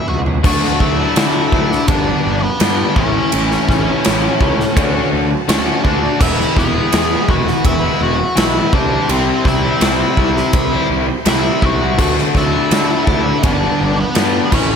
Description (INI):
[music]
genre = quiet-loud alternative rock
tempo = 83 BPM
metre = 4/4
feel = straight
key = unclear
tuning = A4 = 436 Hz
[part]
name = octave-fuzz lead guitar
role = melody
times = 0.0-14.8 s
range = B3 to G#5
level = -20 LUFS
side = left 1 dB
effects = distortion
[part]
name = fuzz picked electric bass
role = bass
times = 0.1-14.7 s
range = E1 to D3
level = -21 LUFS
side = equal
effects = overdrive
[part]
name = big rock drum kit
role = drums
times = 0.1-14.7 s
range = crash cymbal, kick drum, ride cymbal, snare drum, toms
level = -17 LUFS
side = equal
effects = none
[part]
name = clear studio string section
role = sustained chords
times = 0.4-14.8 s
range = G3 to C6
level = -30 LUFS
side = left 3 dB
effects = none
[part]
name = cranked stack guitar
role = riff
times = 0.4-14.8 s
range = G2 to F#4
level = -19 LUFS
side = left 11 dB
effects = overdrive, slapback echo
[part]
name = thick fuzz guitar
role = riff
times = 0.4-14.8 s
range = G2 to F#4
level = -21 LUFS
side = right 10 dB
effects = distortion
[sound]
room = moderate lush hall reverb, RT60 1.9 s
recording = big arena sound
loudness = -12 LUFS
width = side -7 dB against mid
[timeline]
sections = 0.4-14.8 A section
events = drum fill 0.0-0.4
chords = 0.4 D; 1.9 Gadd9; 3.0 A; 4.8 D; 6.2 E; 8.7 C; 12.0 D; 13.4 Gadd9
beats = | 0.44 1.16 1.88 2.60 | 3.33 4.04 4.77 5.49 | 6.21 6.93 7.65 8.37 | 9.09 9.82 10.54 11.26 | 11.99 12.71 13.44 14.16